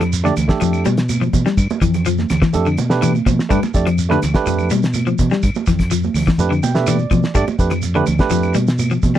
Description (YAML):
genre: afrobeat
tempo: 125 BPM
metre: 4/4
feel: straight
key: G mixolydian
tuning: A4 = 440 Hz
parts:
  - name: barky tine electric piano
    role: accompaniment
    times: 0.0-8.5 s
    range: A3 to G5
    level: -20 LUFS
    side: right 7 dB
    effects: none
  - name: electric guitar at the edge of break-up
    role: arpeggios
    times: 0.0-9.2 s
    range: D3 to G3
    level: -20 LUFS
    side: left 7 dB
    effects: lush chorus
  - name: fingered electric bass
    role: bass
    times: 0.0-9.1 s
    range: D2 to B2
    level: -19 LUFS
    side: equal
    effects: none
  - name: cloth-damped thuddy drum kit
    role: drums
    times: 0.0-9.2 s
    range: hi-hat, kick drum, snare drum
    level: -18 LUFS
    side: equal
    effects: none
  - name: claves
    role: percussion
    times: 0.0-8.9 s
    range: none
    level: -33 LUFS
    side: left 4 dB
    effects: none
  - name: shekere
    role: percussion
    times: 0.0-9.2 s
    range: none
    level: -29 LUFS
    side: right 6 dB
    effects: none
  - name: congas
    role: percussion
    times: 0.1-9.2 s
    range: none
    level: -23 LUFS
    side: right 7 dB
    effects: none
room: little or no reverb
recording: dry, close 1970s-style studio recording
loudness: -14 LUFS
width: side -11 dB against mid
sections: 0.0-9.2 A section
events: tine electric piano fill 6.4-7.4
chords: 0.0 G7